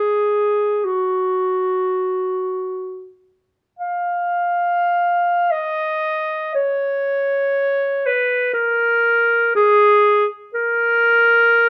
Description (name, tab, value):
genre	classical, free, expressive piece for unaccompanied clarinet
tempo	41-62 BPM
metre	4/4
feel	rubato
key	unclear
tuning	A4 = 440 Hz
part	warm clarinet	solo	0.0-11.7 s	Gb4 to F5	-18 LUFS	equal	none
room	light reverb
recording	none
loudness	-18 LUFS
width	mono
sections	0.0-4.4 A section; 4.4-11.7 B section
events	none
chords	none